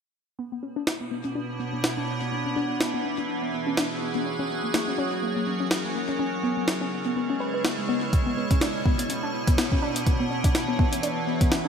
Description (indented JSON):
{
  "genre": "IDM",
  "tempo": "124 BPM",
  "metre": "4/4",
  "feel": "swing 56% on 16ths",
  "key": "B dorian",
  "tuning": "A4 = 437 Hz",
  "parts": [
    { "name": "icy glass pad", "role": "sustained chords", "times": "1.0-11.7 s", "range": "B2 to C#5", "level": "-28 LUFS", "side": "right 1 dB", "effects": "chorus, built-in reverb" },
    { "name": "warbly dusty pluck", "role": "arpeggios", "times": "0.4-11.7 s", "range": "G#3 to B4", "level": "-29 LUFS", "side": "left 2 dB", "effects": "chorus, phaser, ping-pong delay" },
    { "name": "jungle sampler-style drum kit", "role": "drums", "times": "0.9-11.6 s", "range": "hi-hat, snare drum", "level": "-30 LUFS", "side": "equal", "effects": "small room reverb, ping-pong delay" },
    { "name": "electronic kick drum", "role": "drums", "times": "8.1-11.5 s", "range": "none", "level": "-22 LUFS", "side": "equal", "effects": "small room reverb" }
  ],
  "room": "moderate plate reverb, RT60 2.7 s",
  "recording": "bright 1980s-style digital production",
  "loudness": "-24 LUFS",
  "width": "side -7 dB against mid",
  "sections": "0.4-11.7 A section",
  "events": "filter sweep on synth pluck 0.4-11.7",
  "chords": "0.4 Bmadd9; 2.3 Eadd9; 4.3 F#add9; 6.2 C#m; 8.1 Bmadd9; 10.1 Eadd9"
}